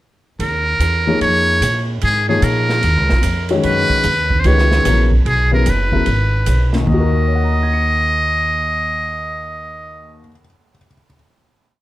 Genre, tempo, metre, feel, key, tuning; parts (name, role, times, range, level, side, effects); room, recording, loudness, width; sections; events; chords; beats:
modal jazz; 148 BPM; 4/4; swing 65% on 8ths; Eb minor; A4 = 441 Hz
trumpet with metal mute; melody; 0.4-10.3 s; Ab4 to Eb5; -18 LUFS; right 1 dB
upright bass; bass; 0.4-10.3 s; Gb1 to Bb2; -17 LUFS; equal
open jazz drum kit; drums; 0.4-7.0 s; hi-hat, kick drum, ride cymbal, snare drum; -24 LUFS; right 2 dB
warm grand piano; accompaniment; 1.1-11.1 s; Eb2 to Db7; -19 LUFS; left 3 dB
light reverb; -13 LUFS; side -15 dB against mid
0.4-6.9 A section; 6.9-10.1 final chord
0.4 Eb9sus4; 3.6 Gb9sus4; 6.9 Ebm
| 0.40 0.80 1.21 1.61 | 2.02 2.42 2.83 3.23 | 3.63 4.04 4.45 4.85 | 5.25 5.66 6.06 6.46 | 6.87 7.27 7.68 8.08 | 8.48 8.88 9.29 9.69